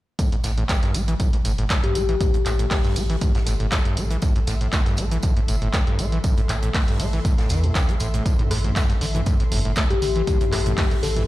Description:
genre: acid house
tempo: 119 BPM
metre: 4/4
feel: swing 54% on 16ths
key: A minor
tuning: A4 = 437 Hz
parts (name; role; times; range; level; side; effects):
- overdriven acid bass; riff; 0.2-11.2 s; G2 to A3; -27 LUFS; equal; distortion, tube saturation, sidechain pumping, digital delay
- compact cocktail drum kit; drums; 0.2-11.2 s; hi-hat, snare drum, tambourine; -36 LUFS; right 2 dB; sidechain pumping on hats, high-pass filter on hats, high-pass filter on snare, sidechain pumping on perc, high-pass filter on perc, high-pass filter on room
- electronic kick drum; drums; 0.2-10.9 s; none; -22 LUFS; equal; none
- punchy analog drum machine; drums; 0.2-11.3 s; handclaps, hi-hat, rim click, toms; -28 LUFS; right 1 dB; none
- granular cloud pad; texture; 2.4-11.3 s; A4 to C6; -36 LUFS; equal; built-in reverb, sidechain pumping
- warm sub bass; bass; 0.4-11.2 s; G1 to E2; -24 LUFS; equal; sidechain pumping
- kalimba; melody; 1.8-2.0, 9.9-11.3 s; G4 to A4; -26 LUFS; left 9 dB; ping-pong delay
room: small room ambience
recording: played on a big sound system in a bare room, large studio reverb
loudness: -19 LUFS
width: side -16 dB against mid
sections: 0.2-11.3 A section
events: fade-in on ambient pad 0.2-11.3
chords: 0.2 Am

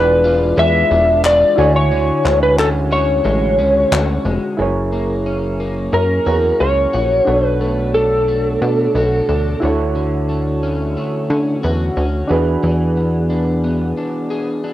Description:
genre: indie pop, bedroom pop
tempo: 90 BPM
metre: 4/4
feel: straight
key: D lydian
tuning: A4 = 440 Hz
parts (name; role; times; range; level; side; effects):
- electric slide guitar; melody; 0.0-9.6 s; A4 to E5; -15 LUFS; left 1 dB; analog chorus, cassette tape
- electric guitar at the edge of break-up; accompaniment; 0.0-14.7 s; F#2 to G#4; -21 LUFS; left 2 dB; analog chorus, vibrato effect, cassette tape
- soft electric-piano-like synth keys; accompaniment; 0.0-14.7 s; D4 to G#5; -22 LUFS; right 3 dB; chorus, cassette tape
- plucky analog bass; bass; 0.0-13.9 s; E1 to D3; -19 LUFS; equal; transformer saturation
- group handclap; percussion; 1.2-4.1 s; none; -24 LUFS; left 3 dB; none
room: moderate studio ambience, RT60 0.5 s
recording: home recording on cassette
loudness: -14 LUFS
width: side -13 dB against mid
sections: 0.0-4.6 A section; 4.6-14.7 B section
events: break 14.0-14.7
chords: 0.0 E7b9; 1.6 Dmaj9#11; 4.6 F#7; 7.3 Bm7; 9.6 Dmaj7; 12.3 E7

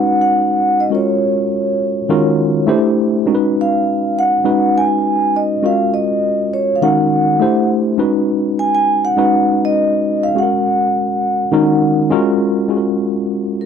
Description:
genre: soul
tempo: 102 BPM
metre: 4/4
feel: straight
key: F# major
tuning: A4 = 436 Hz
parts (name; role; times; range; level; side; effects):
- vibraphone with soft mallets; melody; 0.0-13.7 s; A#4 to G#5; -16 LUFS; right 1 dB; none
- tine electric piano; accompaniment; 0.0-13.7 s; D#3 to C5; -15 LUFS; left 1 dB; overdrive, fast stereo tremolo
room: light reverb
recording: dry, close 1970s-style studio recording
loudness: -13 LUFS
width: side -7 dB against mid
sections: 0.0-12.7 A section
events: none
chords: 0.0 B6; 0.9 F#maj9; 2.1 D#m11; 2.7 C6; 3.3 B6; 5.6 F#maj9; 6.8 D#m7; 7.4 C6; 8.0 B6; 10.4 F#add9; 11.5 D#m7; 12.1 F#maj9

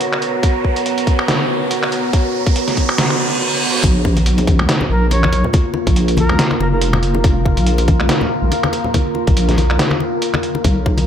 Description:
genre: deep dubstep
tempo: 141 BPM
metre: 4/4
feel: swing 56% on 16ths, half-time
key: Bb phrygian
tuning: A4 = 440 Hz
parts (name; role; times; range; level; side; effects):
- deep dark ambient pad; sustained chords; 0.0-11.1 s; Bb3 to Db5; -20 LUFS; equal; chorus, built-in reverb
- trip hop sampler-style drum kit; drums; 0.0-11.1 s; finger snaps, hi-hat, snare drum; -20 LUFS; equal; overdrive, studio reverb
- riser and reverse cymbal; sound effects; 0.1-3.8 s; none; -23 LUFS; right 3 dB; none
- wind-like tuned noise texture; texture; 0.0-3.4 s; Bb4; -27 LUFS; right 4 dB; built-in reverb, analog chorus
- electronic kick drum; drums; 0.4-11.0 s; none; -15 LUFS; equal; studio reverb
- deep soft wobble bass; bass; 3.8-11.1 s; F1 to Cb2; -16 LUFS; equal; chorus
- congas; percussion; 3.8-11.1 s; none; -22 LUFS; left 3 dB; none
- bright reedy shakuhachi; melody; 4.9-6.8 s; Bb4 to Db5; -24 LUFS; left 1 dB; dub echo
room: moderate plate reverb, RT60 2.6 s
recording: dreamy mix soaked in reverb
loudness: -13 LUFS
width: side -9 dB against mid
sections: 0.0-3.8 A section; 3.8-11.1 B section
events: build-up 0.0-3.8; riser 0.1-3.8; reverse cymbal 3.0-3.8; drop 3.8-11.1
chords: 0.0 B5; 3.8 Bb5

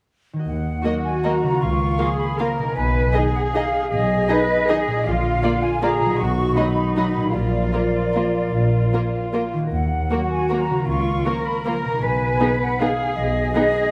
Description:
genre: classical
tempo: 156 BPM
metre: 3/4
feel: uneven beats, rubato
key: Eb minor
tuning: A4 = 440 Hz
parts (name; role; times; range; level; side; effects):
- concert harp; arpeggios; 0.3-13.9 s; Bb2 to F5; -30 LUFS; equal; none
- muted studio double bass section; bass; 0.4-13.5 s; Bb1 to Eb2; -27 LUFS; equal; none
- mellow flute section; second line; 0.5-13.9 s; D5 to Db6; -28 LUFS; equal; none
- muted studio violin section; melody; 0.8-13.6 s; Ab4 to F5; -34 LUFS; equal; none
- muted studio violin section; second line; 0.8-13.6 s; D#4 to Ab4; -33 LUFS; equal; none
- muted studio viola section; accompaniment; 0.8-13.6 s; F#3 to Eb4; -31 LUFS; equal; none
- dark French horn section; sustained chords; 0.8-13.7 s; D3 to Bb4; -31 LUFS; equal; none
- muted studio cello section; bass; 0.8-13.9 s; D#4 to Cb5; -26 LUFS; equal; none
room: wet scoring stage reverb, RT60 1.6 s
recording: dark, warm production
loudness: -21 LUFS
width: mono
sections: 0.5-13.9 A section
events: none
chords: 0.5 Ebm; 1.6 Bbm/Db; 2.8 Abm/Cb; 5.1 Bb; 6.2 B; 7.3 Bb; 9.7 Ebm; 10.9 Bbm/Db; 12.0 Abm/Cb

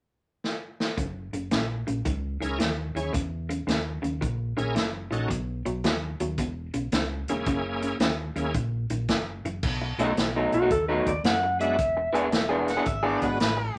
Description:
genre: electric blues shuffle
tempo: 111 BPM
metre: 4/4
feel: swing 66% on 8ths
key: unclear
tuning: A4 = 437 Hz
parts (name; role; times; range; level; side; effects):
- swinging big-band drum kit; drums; 0.4-13.6 s; crash cymbal, hi-hat, kick drum, snare drum; -30 LUFS; equal; none
- electric guitar through a small old amp; riff; 1.0-13.6 s; E2 to G#4; -32 LUFS; equal; none
- fingered electric bass; bass; 1.0-13.8 s; E1 to F#2; -35 LUFS; equal; none
- bright tonewheel organ; accompaniment; 2.4-13.4 s; G#3 to C#5; -32 LUFS; equal; slow rotary speaker, overdrive, chorus vibrato
- clean lap steel guitar; melody; 10.5-13.2 s; F#4 to F#5; -28 LUFS; equal; none
- clear harmonica; second line; 12.7-13.8 s; B4 to F#5; -33 LUFS; equal; overdrive
room: light reverb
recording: none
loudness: -27 LUFS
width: mono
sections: 1.0-9.6 A section; 9.6-13.8 B section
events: drum fill 0.4-1.0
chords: 0.0 N.C.; 1.0 F#7; 5.3 B; 6.4 E7; 7.5 F#7; 9.6 B7; 11.8 E7

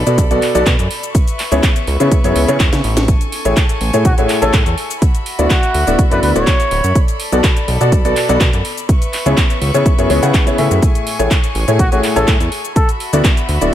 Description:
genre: piano house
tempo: 124 BPM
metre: 4/4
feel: straight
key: A major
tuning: A4 = 442 Hz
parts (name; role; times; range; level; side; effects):
- clear chamber violin section; sustained chords; 0.0-13.7 s; F#4 to C#6; -25 LUFS; left 2 dB; sidechain pumping
- fat analog bass; bass; 0.0-13.7 s; D1 to C#3; -16 LUFS; equal; sidechain pumping
- clear upright piano; riff; 0.1-13.7 s; A2 to F#5; -17 LUFS; left 1 dB; sidechain pumping, ping-pong delay
- house drum kit; drums; 0.1-13.7 s; handclaps, hi-hat, shaker, snare drum; -21 LUFS; equal; none
- electronic kick drum; drums; 0.2-13.3 s; none; -13 LUFS; equal; none
- trumpet with plunger mute; melody; 4.1-7.0, 11.8-12.9 s; F#4 to C#5; -20 LUFS; equal; vintage 12-bit sampler grit, ping-pong delay
room: small room ambience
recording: none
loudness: -12 LUFS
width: side -11 dB against mid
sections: 0.0-13.7 A section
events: drum fill 2.7-3.1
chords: 0.0 Bm7; 1.1 C#m7; 3.1 Amaj7; 5.0 D69; 7.0 Bm7; 8.9 C#m7; 10.8 Amaj7; 12.8 D69

